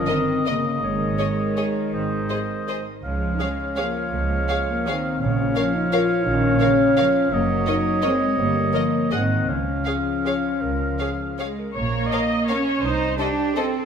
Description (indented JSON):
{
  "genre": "classical, orchestral ballroom waltz",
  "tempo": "148-185 BPM",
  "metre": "3/4",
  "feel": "rubato",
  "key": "Db major",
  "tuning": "A4 = 439 Hz",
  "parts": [
    { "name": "clear clarinet", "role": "second line", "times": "0.0-11.8 s", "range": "Ab4 to Eb5", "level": "-30 LUFS", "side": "right 2 dB", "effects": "none" },
    { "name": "warm oboe", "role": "second line", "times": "0.0-11.6 s", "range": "Eb5 to Gb5", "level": "-27 LUFS", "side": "right 1 dB", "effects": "none" },
    { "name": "mellow French horn section", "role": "sustained chords", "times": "0.0-11.6 s", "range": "Ab3 to F4", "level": "-24 LUFS", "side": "left 4 dB", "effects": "none" },
    { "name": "rich symphonic cello section", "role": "bass", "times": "0.0-13.9 s", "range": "Db3 to Eb4", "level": "-28 LUFS", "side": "right 3 dB", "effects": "none" },
    { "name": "warm symphonic violin section", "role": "melody", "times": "0.1-13.7 s", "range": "Eb5 to Gb5", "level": "-34 LUFS", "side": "left 3 dB", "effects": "none" },
    { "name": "warm symphonic violin section", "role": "second line", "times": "0.1-13.6 s", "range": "A4 to Eb5", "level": "-32 LUFS", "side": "equal", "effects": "none" },
    { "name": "dark symphonic viola section", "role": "accompaniment", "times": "0.1-13.9 s", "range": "G4 to Eb5", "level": "-29 LUFS", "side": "equal", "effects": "none" },
    { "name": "warm symphonic double bass section", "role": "bass", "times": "0.8-13.1 s", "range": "Gb1 to Db2", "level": "-27 LUFS", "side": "right 3 dB", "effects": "none" }
  ],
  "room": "wet recital hall reverb, RT60 1.7 s",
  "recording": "none",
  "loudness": "-20 LUFS",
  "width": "side -7 dB against mid",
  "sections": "0.0-11.8 A section; 11.8-13.9 B section",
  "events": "none",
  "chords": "0.0 Eb7(no3); 0.8 Absus4; 3.0 Db; 5.2 Bbm; 7.3 Ebm7/Gb; 8.4 Eb7/G; 9.1 Ab7; 9.5 Db; 11.8 Bbm; 12.8 Adim/C"
}